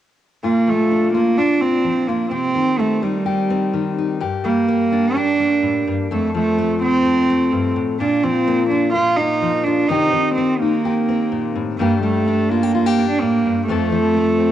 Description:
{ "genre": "folk", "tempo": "127 BPM", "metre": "4/4", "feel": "straight", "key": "Bb major", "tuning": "A4 = 437 Hz", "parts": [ { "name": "rich cello", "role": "melody", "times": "0.4-14.5 s", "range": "G3 to F4", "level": "-17 LUFS", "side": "right 3 dB", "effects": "tape echo" }, { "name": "fingerpicked steel-string acoustic guitar", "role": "accompaniment", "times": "0.4-14.5 s", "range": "F2 to A4", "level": "-21 LUFS", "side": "left 6 dB", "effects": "cassette tape" } ], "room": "light reverb, small room reverb", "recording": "home recording on cassette", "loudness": "-16 LUFS", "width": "side -11 dB against mid", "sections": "0.4-14.5 A section", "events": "none", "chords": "0.4 Bb; 2.3 Cm; 4.2 Gm; 6.1 F; 8.0 Bb5; 9.9 Cm; 11.8 Gm; 13.7 F", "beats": "| 0.43 0.90 1.37 1.84 | 2.32 2.79 3.26 3.74 | 4.21 4.68 5.16 5.63 | 6.10 6.58 7.05 7.52 | 8.00 8.47 8.95 9.42 | 9.89 10.37 10.84 11.31 | 11.79 12.26 12.73 13.20 | 13.68 14.15" }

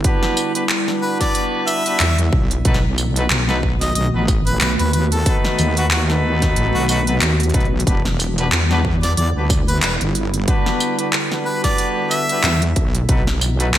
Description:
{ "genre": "glitch hop", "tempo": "92 BPM", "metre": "4/4", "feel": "swing 56% on 16ths", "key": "E minor", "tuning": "A4 = 440 Hz", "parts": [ { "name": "warbly tape-like pad", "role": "sustained chords", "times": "0.0-13.8 s", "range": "D3 to F#4", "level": "-25 LUFS", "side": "equal", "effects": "chorus, built-in reverb, phaser, sidechain pumping" }, { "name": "clear horn section", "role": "stabs", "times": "0.0-13.7 s", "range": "B3 to B4", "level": "-24 LUFS", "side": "equal", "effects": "sidechain pumping, digital delay" }, { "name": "wobble bass", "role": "bass", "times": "0.0-13.8 s", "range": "E1 to E2", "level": "-19 LUFS", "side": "equal", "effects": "chorus" }, { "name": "dubstep drum kit", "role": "drums", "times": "0.0-13.8 s", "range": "handclaps, hi-hat, snare drum, tambourine", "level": "-22 LUFS", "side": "equal", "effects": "small room ambience, gated reverb" }, { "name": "electronic kick drum", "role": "drums", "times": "0.0-13.2 s", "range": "none", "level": "-19 LUFS", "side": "equal", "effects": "small room ambience" }, { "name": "clear harmonica", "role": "melody", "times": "1.0-12.6 s", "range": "F#4 to E5", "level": "-24 LUFS", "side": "equal", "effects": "digital delay" } ], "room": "light reverb", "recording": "bright 1980s-style digital production", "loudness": "-15 LUFS", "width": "side -12 dB against mid", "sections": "0.0-13.8 A section", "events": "none", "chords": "0.0 Em7; 2.7 B7; 7.9 Em7; 13.1 B7", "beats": "| 0.04 0.70 1.35 2.00 | 2.65 3.31 3.96 4.61 | 5.26 5.91 6.57 7.22 | 7.87 8.52 9.18 9.83 | 10.48 11.13 11.78 12.44 | 13.09 13.74" }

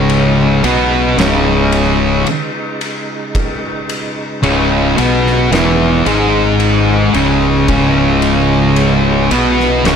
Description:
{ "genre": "stoner and doom metal", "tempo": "55 BPM", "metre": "4/4", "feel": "straight", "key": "C# minor", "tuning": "A4 = 439 Hz", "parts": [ { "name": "tonewheel organ", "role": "sustained chords", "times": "0.0-10.0 s", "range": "C#3 to E4", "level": "-25 LUFS", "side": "right 3 dB", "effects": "none" }, { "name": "fuzz guitar", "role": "riff", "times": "0.0-10.0 s", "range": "C#2 to B3", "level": "-14 LUFS", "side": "left 7 dB", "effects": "distortion" }, { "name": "thick fuzz guitar", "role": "riff", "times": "0.0-10.0 s", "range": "C#2 to B3", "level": "-16 LUFS", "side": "right 11 dB", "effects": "distortion" }, { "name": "tight distorted guitar", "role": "riff", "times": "0.0-10.0 s", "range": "C#2 to B3", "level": "-19 LUFS", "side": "right 2 dB", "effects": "distortion" }, { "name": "fuzz fingered electric bass", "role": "bass", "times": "0.0-10.0 s", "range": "C#1 to B1", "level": "-18 LUFS", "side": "equal", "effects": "overdrive" }, { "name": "oversized low-tuned drum kit", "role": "drums", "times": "0.1-10.0 s", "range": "kick drum, ride cymbal, snare drum", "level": "-20 LUFS", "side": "equal", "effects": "none" } ], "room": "light reverb", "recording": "none", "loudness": "-10 LUFS", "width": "side -7 dB against mid", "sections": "0.0-10.0 A section", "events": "none", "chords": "0.0 C#m", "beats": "0.10 1.18 2.26 | 3.35 4.43 5.52 6.60 | 7.68 8.77 9.85" }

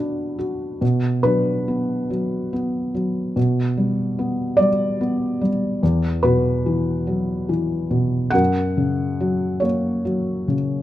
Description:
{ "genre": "classical, lyrical solo piano", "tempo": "48 BPM (dotted quarters)", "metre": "6/8", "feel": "uneven beats, rubato", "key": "B minor", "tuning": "A4 = 441 Hz", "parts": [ { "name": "felt-muted upright piano", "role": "solo", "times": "0.0-10.8 s", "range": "E2 to B5", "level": "-19 LUFS", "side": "equal", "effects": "none" } ], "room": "light reverb", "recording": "close, detailed microphones", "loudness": "-19 LUFS", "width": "side -13 dB against mid", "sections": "0.8-10.8 A section", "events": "none", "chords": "0.0 Bm; 3.4 G/B; 5.8 Esus2; 8.3 F#", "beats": "| 0.82 2.10 | 3.36 4.59 | 5.82 7.06 | 8.34 9.62" }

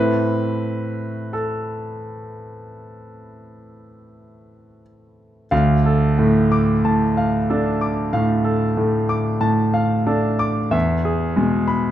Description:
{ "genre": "classical, romantic nocturne for solo piano", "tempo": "40-48 BPM", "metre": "4/4", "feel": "rubato", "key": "unclear", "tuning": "A4 = 440 Hz", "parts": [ { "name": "clear concert grand piano", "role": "solo", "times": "0.0-11.9 s", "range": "D2 to D6", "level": "-18 LUFS", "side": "equal", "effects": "none" } ], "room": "wet recital hall reverb, RT60 1.4 s", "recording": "dark, warm production", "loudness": "-17 LUFS", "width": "side -11 dB against mid", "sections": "0.0-5.5 A section; 5.5-11.9 B section", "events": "none", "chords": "0.0 Am; 5.5 Dm; 10.7 E", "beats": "1.35 2.77 4.12 | 5.52 6.85 8.14 9.43 | 10.74" }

